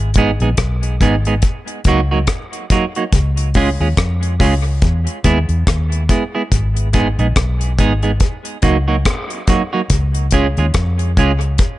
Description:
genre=dub reggae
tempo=71 BPM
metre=4/4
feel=swing 59% on 16ths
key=G# minor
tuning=A4 = 441 Hz
part: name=vintage muted fingered electric bass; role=bass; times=0.0-11.6 s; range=G#1 to E#2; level=-16 LUFS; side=equal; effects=none
part: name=deep reggae drum kit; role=drums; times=0.1-11.8 s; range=hi-hat, kick drum, rim click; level=-17 LUFS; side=left 1 dB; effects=none
part: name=clean electric guitar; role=accompaniment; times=0.2-11.3 s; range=F#3 to G#4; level=-19 LUFS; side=right 3 dB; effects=dub echo
room=studio reverb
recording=nothing above 10.6 kHz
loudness=-13 LUFS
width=side -16 dB against mid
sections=0.0-11.8 A section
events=none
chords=0.0 G#m; 1.4 D#m; 3.1 C#; 4.8 E; 6.5 G#m; 8.2 D#m; 9.9 C#

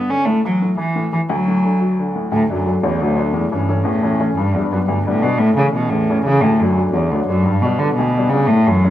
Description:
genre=celtic folk, Celtic jig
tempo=117 BPM (dotted quarters)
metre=6/8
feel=straight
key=D major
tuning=A4 = 441 Hz
part: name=dark cello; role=melody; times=0.0-8.9 s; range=D2 to C#4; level=-16 LUFS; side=equal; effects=none
part: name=clear upright piano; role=accompaniment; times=0.0-8.9 s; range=A1 to D4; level=-20 LUFS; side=left 2 dB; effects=none
room=wet studio reverb, RT60 0.6 s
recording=none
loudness=-15 LUFS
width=side -12 dB against mid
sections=0.0-2.3 A section; 2.3-8.9 A section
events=none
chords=0.3 A5; 1.3 D; 3.3 A; 4.4 G; 5.4 A; 6.4 D; 7.5 G

